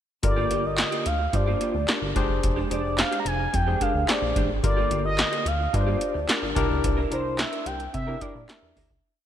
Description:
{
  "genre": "early-eighties boogie funk",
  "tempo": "109 BPM",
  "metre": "4/4",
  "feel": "straight",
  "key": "unclear",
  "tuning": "A4 = 439 Hz",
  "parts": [
    { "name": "expressive synth lead", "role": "melody", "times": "0.2-8.9 s", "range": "C5 to Bb5", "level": "-28 LUFS", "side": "equal", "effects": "chorus, digital delay" },
    { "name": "barky tine electric piano", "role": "accompaniment", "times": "0.2-8.9 s", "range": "D3 to C5", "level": "-30 LUFS", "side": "moving between left 6 dB and right 1 dB", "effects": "overdrive, auto-pan" },
    { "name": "electric guitar through a small old amp", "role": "riff", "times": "0.2-8.9 s", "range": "Ab3 to Bb4", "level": "-33 LUFS", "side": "right 3 dB", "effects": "ensemble chorus" },
    { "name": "chorused synth bass", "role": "bass", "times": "0.2-9.0 s", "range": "F1 to C3", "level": "-28 LUFS", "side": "equal", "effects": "none" },
    { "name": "electro analog drum machine", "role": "drums", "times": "0.2-9.0 s", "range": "handclaps, hi-hat, kick drum, snare drum", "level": "-26 LUFS", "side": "equal", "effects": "none" }
  ],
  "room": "moderate lush hall reverb, RT60 2.3 s",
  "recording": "bright 1980s-style digital production",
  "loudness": "-22 LUFS",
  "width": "side -10 dB against mid",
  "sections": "0.2-9.0 verse",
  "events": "fade-out 6.8-9.0",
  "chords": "0.2 Gm7; 2.2 Fm69; 4.6 Gm7; 6.6 C9"
}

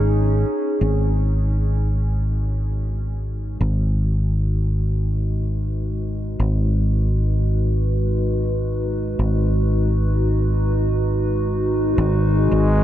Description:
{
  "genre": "ambient dub",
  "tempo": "free time",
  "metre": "none",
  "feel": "none",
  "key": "G# minor",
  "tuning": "A4 = 440 Hz",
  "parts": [
    { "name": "warbly tape-like pad", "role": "sustained chords", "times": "0.0-12.8 s", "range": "G#3 to B4", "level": "-25 LUFS", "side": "equal", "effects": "chorus, built-in reverb" },
    { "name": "fingered electric bass", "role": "bass", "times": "0.0-12.8 s", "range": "G#1", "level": "-19 LUFS", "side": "equal", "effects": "tube saturation" },
    { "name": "clear trombone", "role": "melody", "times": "12.3-12.8 s", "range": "G#3", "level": "-30 LUFS", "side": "equal", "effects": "dub echo" }
  ],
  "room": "light reverb, studio reverb",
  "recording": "none",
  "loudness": "-18 LUFS",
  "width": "side -12 dB against mid",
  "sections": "0.8-12.0 A section",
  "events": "none",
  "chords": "0.0 Badd9/G# (rootless); 0.8 G#m7"
}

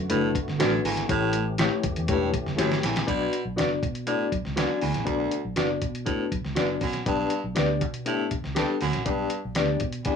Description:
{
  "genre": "uptempo 1960s-style soul",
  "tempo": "120 BPM",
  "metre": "4/4",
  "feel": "straight",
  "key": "unclear",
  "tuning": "A4 = 440 Hz",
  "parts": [
    { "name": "tonewheel organ", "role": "sustained chords", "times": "0.0-3.1 s", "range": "D3 to G4", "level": "-35 LUFS", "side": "left 2 dB", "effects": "slow rotary speaker, overdrive, chorus vibrato, plate reverb" },
    { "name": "vintage muted fingered electric bass", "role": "bass", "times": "0.0-10.0 s", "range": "E1 to B2", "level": "-31 LUFS", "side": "right 1 dB", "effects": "none" },
    { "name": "reed electric piano", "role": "accompaniment", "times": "0.1-10.2 s", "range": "A3 to E5", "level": "-28 LUFS", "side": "left 7 dB", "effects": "overdrive, fast tremolo, plate reverb" },
    { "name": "raspy baritone saxophone", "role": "riff", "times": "0.1-10.2 s", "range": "D2 to B2", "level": "-29 LUFS", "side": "right 5 dB", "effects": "none" },
    { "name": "lo-fi sampler-style drum kit", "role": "drums", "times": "0.1-10.2 s", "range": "hi-hat, kick drum, snare drum", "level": "-30 LUFS", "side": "equal", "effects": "none" },
    { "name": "mellow electric guitar", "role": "stabs", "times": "0.6-9.7 s", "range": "E4 to D5", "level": "-30 LUFS", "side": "right 2 dB", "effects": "lush chorus, plate reverb" }
  ],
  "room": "light reverb",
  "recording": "none",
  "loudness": "-23 LUFS",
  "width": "side -6 dB against mid",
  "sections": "0.0-3.1 A section; 3.1-10.2 B section",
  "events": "drum fill 2.6-3.1",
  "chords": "0.0 Bm7; 1.1 A7; 3.1 Bm; 7.1 G"
}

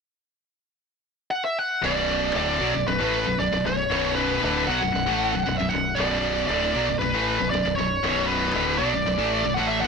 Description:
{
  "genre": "metal",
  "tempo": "116 BPM",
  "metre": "4/4",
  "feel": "straight",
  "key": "B minor",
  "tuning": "A4 = 441 Hz",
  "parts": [
    { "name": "high-gain lead guitar", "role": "melody", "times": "1.3-9.9 s", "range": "B4 to F#5", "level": "-24 LUFS", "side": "equal", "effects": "distortion" },
    { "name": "scooped high-gain guitar", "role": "riff", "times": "1.8-9.9 s", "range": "B1 to A3", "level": "-27 LUFS", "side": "right 13 dB", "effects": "distortion" },
    { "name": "tight distorted guitar", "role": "riff", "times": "1.8-9.9 s", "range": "B1 to A3", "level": "-27 LUFS", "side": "left 12 dB", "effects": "distortion" },
    { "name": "growling fingered electric bass", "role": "bass", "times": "1.8-9.9 s", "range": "B0 to B1", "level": "-31 LUFS", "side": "equal", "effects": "overdrive" }
  ],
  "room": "light reverb",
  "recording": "none",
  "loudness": "-21 LUFS",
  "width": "side -5 dB against mid",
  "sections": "0.0-1.8 A section; 1.8-9.9 B section",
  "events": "none",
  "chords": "0.0 N.C.; 1.8 Bm"
}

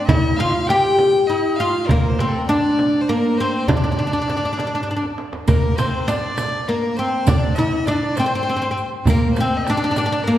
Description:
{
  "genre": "Persian modal ensemble",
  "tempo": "67 BPM (dotted quarters)",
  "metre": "6/8",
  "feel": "straight",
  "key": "D dastgah shur",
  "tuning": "A4 = 441 Hz",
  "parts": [
    { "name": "oud", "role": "melody", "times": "0.0-10.4 s", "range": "Bb3 to G4", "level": "-19 LUFS", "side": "left 1 dB", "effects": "none" },
    { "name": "warm violin", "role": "second line", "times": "0.0-10.4 s", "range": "A4 to G5", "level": "-26 LUFS", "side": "left 1 dB", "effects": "none" },
    { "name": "frame drum", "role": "percussion", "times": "0.1-10.1 s", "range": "none", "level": "-22 LUFS", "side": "right 1 dB", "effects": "none" },
    { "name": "tombak", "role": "percussion", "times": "0.1-10.1 s", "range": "none", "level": "-24 LUFS", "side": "right 1 dB", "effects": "none" },
    { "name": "riq", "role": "percussion", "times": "5.5-10.1 s", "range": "none", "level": "-30 LUFS", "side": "right 3 dB", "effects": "none" }
  ],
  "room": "wet concert hall reverb, RT60 1.8 s",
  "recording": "heard from further back in the room, lossy compression artefacts",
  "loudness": "-16 LUFS",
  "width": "side -12 dB against mid",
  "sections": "0.0-5.5 A section; 5.5-10.4 A section",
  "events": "drum fill 4.9-5.5",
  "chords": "none"
}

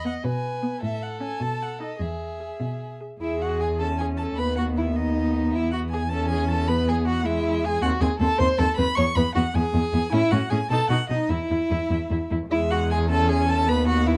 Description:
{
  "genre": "quick classical-period movement for string quartet",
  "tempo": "103 BPM (dotted quarters)",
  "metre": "6/8",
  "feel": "straight",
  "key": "E major",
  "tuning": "A4 = 440 Hz",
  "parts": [
    { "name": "warm violin", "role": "melody", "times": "0.0-14.2 s", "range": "D#5 to C#6", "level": "-32 LUFS", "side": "equal", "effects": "none" },
    { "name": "warm violin", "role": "second line", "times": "0.0-14.1 s", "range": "D#4 to D#5", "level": "-30 LUFS", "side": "equal", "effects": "none" },
    { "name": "rich viola", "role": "accompaniment", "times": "0.0-14.2 s", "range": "G#3 to G#4", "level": "-30 LUFS", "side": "equal", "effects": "none" },
    { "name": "warm cello", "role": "bass", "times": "0.0-14.2 s", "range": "D#2 to B2", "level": "-28 LUFS", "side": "equal", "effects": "none" }
  ],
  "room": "light reverb",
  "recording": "dark, warm production",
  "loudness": "-24 LUFS",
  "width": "mono",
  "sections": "0.0-3.2 A section; 3.2-12.5 B section; 12.5-14.2 B section",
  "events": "none",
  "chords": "0.0 E; 0.8 Amaj7; 1.4 B7; 2.0 E; 3.8 Amaj7/E; 4.4 B/D#; 5.5 E5; 6.1 Amaj7/E; 6.7 E; 7.8 B13b9/D#; 9.0 E; 10.1 F#m9; 10.7 B; 11.3 N.C.; 12.5 E; 13.1 Amaj7/E"
}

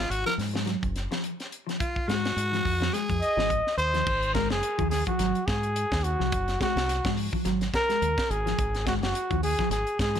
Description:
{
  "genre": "afrobeat",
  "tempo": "106 BPM",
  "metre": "4/4",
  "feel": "swing 56% on 16ths",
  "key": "Ab mixolydian",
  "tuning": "A4 = 438 Hz",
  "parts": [
    { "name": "raspy tenor saxophone", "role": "melody", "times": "0.0-3.5 s", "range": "F4 to Bb4", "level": "-29 LUFS", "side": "left 1 dB", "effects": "none" },
    { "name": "deep dub fingered electric bass", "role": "bass", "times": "0.0-10.2 s", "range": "Gb1 to Ab2", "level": "-30 LUFS", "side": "equal", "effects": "none" },
    { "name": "tight funk drum kit", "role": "drums", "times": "0.1-10.2 s", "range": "crash cymbal, hi-hat, kick drum, snare drum", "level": "-32 LUFS", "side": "equal", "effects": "none" },
    { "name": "electric guitar at the edge of break-up", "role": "arpeggios", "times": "0.3-10.2 s", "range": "F3 to Ab3", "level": "-31 LUFS", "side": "left 1 dB", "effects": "phaser" },
    { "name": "breathy trumpet", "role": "melody", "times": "3.2-10.2 s", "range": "Gb4 to Eb5", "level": "-27 LUFS", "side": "equal", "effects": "plate reverb, tape echo" }
  ],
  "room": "light reverb",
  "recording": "none",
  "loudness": "-24 LUFS",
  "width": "side -9 dB against mid",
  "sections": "0.0-4.1 A section; 4.1-10.2 B section",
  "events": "tenor saxophone solo 0.0-4.1",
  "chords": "0.0 Ab7(no3)"
}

